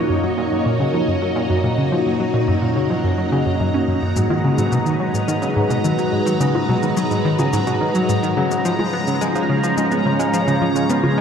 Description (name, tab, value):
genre	ambient, sequencer-driven space music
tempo	107 BPM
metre	4/4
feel	straight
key	G# dorian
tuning	A4 = 440 Hz
part	string machine, full ensemble	sustained chords	0.0-11.2 s	G#3 to E#5	-21 LUFS	equal	phaser, ensemble chorus
part	Celtic harp	arpeggios	0.0-11.2 s	E#3 to E#4	-25 LUFS	left 2 dB	auto-pan, tape echo
part	analog pluck	riff	0.0-11.2 s	F#2 to C#4	-20 LUFS	equal	chorus, tape echo
part	bubbling stepped-filter texture	texture	0.1-11.2 s	A#5	-28 LUFS	equal	chorus, built-in reverb
part	shaker and bongos	percussion	4.2-11.1 s	none	-29 LUFS	left 3 dB	tape echo
room	wet scoring stage reverb, RT60 1.8 s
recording	dark, warm production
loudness	-16 LUFS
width	side -7 dB against mid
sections	0.0-11.2 A section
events	fade-in on harp 0.0-11.2; fade-in on synth texture 0.0-11.2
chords	0.0 F#6; 4.2 G#m7; 8.7 C#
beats	0.24 0.80 1.36 | 1.92 2.48 3.04 3.60 | 4.16 4.72 5.29 5.85 | 6.41 6.97 7.53 8.09 | 8.65 9.21 9.77 10.33 | 10.89